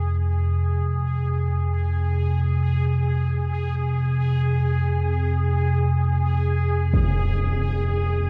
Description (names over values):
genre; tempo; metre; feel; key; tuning
dark ambient drone; free time; none; none; F minor; A4 = 437 Hz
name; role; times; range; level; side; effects
analog drone; drone; 0.0-8.3 s; F2 to C3; -23 LUFS; equal; lush chorus
bubbling stepped-filter texture; texture; 0.0-8.3 s; Ab4; -33 LUFS; equal; chorus, built-in reverb
impact; percussion; 6.9-7.1 s; none; -27 LUFS; equal; low-pass filter on sfx
room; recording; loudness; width
moderate huge ambient reverb, RT60 8.6 s; none; -23 LUFS; mono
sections
0.0-8.3 A section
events
fade-in on synth texture 0.0-8.3; filter sweep on synth drone 0.0-8.3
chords
0.0 Fm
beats
free time